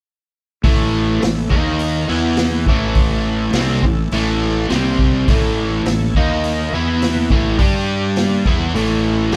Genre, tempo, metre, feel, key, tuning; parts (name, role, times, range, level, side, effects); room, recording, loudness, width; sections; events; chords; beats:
blues rock power trio and southern rock; 104 BPM; 4/4; straight; A mixolydian; A4 = 439 Hz
overdriven tonewheel organ; sustained chords; 0.6-9.4 s; A#3 to E5; -33 LUFS; equal
overdriven semi-hollow guitar; riff; 0.6-9.4 s; A2 to G4; -20 LUFS; equal
fuzz fingered electric bass; bass; 0.6-9.4 s; A1 to G2; -24 LUFS; equal; overdrive
vintage drum kit; drums; 0.6-9.4 s; hi-hat, kick drum, snare drum; -20 LUFS; equal
moderate studio reverb, RT60 0.9 s; band playing live in one room; -17 LUFS; mono
0.6-9.4 A section
0.6 A; 1.5 D#5; 2.1 E5; 2.7 A; 4.7 C5; 5.3 A; 6.1 D#5; 6.7 E5; 7.3 A5; 7.6 G5; 8.5 A
| 0.65 1.23 1.80 2.38 | 2.96 3.54 4.12 4.70 | 5.28 5.86 6.43 7.01 | 7.59 8.17 8.75 9.33